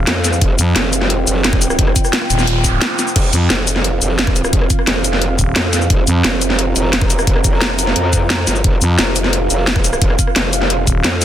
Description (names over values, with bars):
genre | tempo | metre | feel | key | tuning
dark technical drum and bass | 175 BPM | 4/4 | straight | unclear | A4 = 439 Hz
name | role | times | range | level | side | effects
deep dark ambient pad | sustained chords | 0.0-11.2 s | C4 to Bb5 | -21 LUFS | right 2 dB | chorus, built-in reverb, sidechain pumping
growling FM bass | bass | 0.0-6.2, 8.8-11.0 s | Eb1 to F2 | -14 LUFS | equal | none
growl bass | bass | 0.1-11.2 s | F1 to F2 | -18 LUFS | equal | chorus, overdrive
drum and bass drum kit | drums | 0.1-11.2 s | crash cymbal, hi-hat, rim click, shaker, snare drum | -17 LUFS | left 1 dB | none
electronic kick drum | drums | 0.4-10.9 s | none | -15 LUFS | equal | overdrive
noise sweep | sound effects | 2.0-3.2 s | none | -24 LUFS | right 3 dB | none
room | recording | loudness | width
light reverb | dense, heavily limited modern master | -12 LUFS | side -11 dB against mid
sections
0.0-11.2 A section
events
noise sweep 2.0-3.2; break 2.8-3.2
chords
0.0 F5